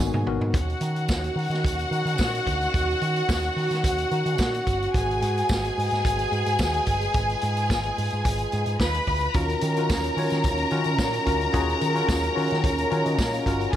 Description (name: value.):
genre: disco.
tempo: 109 BPM.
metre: 4/4.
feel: straight.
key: Eb minor.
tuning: A4 = 440 Hz.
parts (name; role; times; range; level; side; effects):
clear symphonic string section; second line; 0.0-13.8 s; Gb4 to Cb6; -26 LUFS; left 1 dB; none.
mellow tine electric piano; accompaniment; 0.0-0.6, 9.3-13.8 s; Bb3 to Gb5; -28 LUFS; left 3 dB; medium stereo tremolo.
mellow French horn section; sustained chords; 0.0-13.8 s; Eb3 to Cb5; -31 LUFS; right 2 dB; none.
picked electric bass with an envelope filter; bass; 0.0-13.8 s; G1 to Eb3; -28 LUFS; right 1 dB; none.
vintage drum kit; drums; 0.0-13.8 s; hi-hat, kick drum, snare drum, toms; -28 LUFS; equal; none.
tambourine; percussion; 1.1-13.3 s; none; -40 LUFS; right 8 dB; none.
room: light reverb, studio reverb.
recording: none.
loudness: -22 LUFS.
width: side -11 dB against mid.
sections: 0.5-13.8 A section.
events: drum fill 0.0-0.5; tine electric piano fill 12.6-13.7.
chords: 0.0 Abm7; 0.5 Ebm7; 4.9 Abm7; 9.3 Ebm7.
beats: | 0.54 1.09 1.64 2.19 | 2.74 3.29 3.84 4.39 | 4.94 5.49 6.04 6.59 | 7.14 7.69 8.24 8.79 | 9.34 9.89 10.44 10.99 | 11.54 12.09 12.64 13.19 | 13.74.